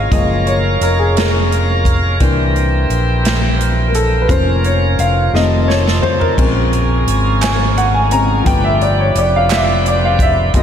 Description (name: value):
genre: slow gospel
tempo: 58 BPM (dotted quarters)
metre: 6/8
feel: straight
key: unclear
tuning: A4 = 441 Hz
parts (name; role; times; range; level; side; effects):
- warm baby grand piano; accompaniment; 0.0-10.6 s; C3 to Bb5; -16 LUFS; left 2 dB; none
- bright tonewheel organ; sustained chords; 0.0-10.6 s; C3 to Bb4; -22 LUFS; right 2 dB; slow rotary speaker, overdrive
- dark woodwind section; sustained chords; 0.0-10.6 s; Db4 to D6; -24 LUFS; right 2 dB; none
- fingered electric bass; bass; 0.0-10.6 s; F1 to C2; -16 LUFS; equal; none
- swinging big-band drum kit; drums; 0.1-10.6 s; crash cymbal, hi-hat, kick drum, snare drum, toms; -19 LUFS; equal; none
- group handclap; percussion; 7.4-9.8 s; none; -27 LUFS; right 8 dB; none
room: moderate lush hall reverb, RT60 2.9 s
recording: dreamy mix soaked in reverb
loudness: -11 LUFS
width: side -8 dB against mid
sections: 0.0-10.6 A section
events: grand piano solo 0.0-10.6; drum fill 5.3-6.4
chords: 0.1 Gbmaj7; 2.2 C7; 4.3 Bbm/F; 5.3 F7; 6.4 Bbm7; 8.5 G7